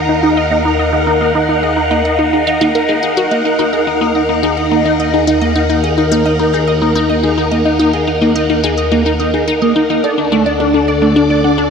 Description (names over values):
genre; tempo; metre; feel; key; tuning
ambient, sequencer-driven space music; 107 BPM; 4/4; straight; Eb minor; A4 = 439 Hz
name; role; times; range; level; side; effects
phased string machine; sustained chords; 0.0-11.7 s; D4 to Gb5; -15 LUFS; equal; ensemble chorus, phaser, shimmer reverb
fat analog bass; bass; 0.0-11.7 s; D2 to Eb2; -20 LUFS; equal; none
mellow electric guitar; arpeggios; 0.1-11.5 s; A3 to A4; -18 LUFS; moving between left 2 dB and right 6 dB; auto-pan, ping-pong delay, shimmer reverb
resonant blip pluck; riff; 0.1-11.7 s; D4 to F#5; -16 LUFS; left 2 dB; phaser, ping-pong delay, shimmer reverb
room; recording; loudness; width
wet plate reverb, RT60 2.9 s; cassette tape; -11 LUFS; side -6 dB against mid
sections
0.0-11.7 A section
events
fade-in on clean electric guitar 0.0-11.7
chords
0.0 Ebmadd9; 10.0 D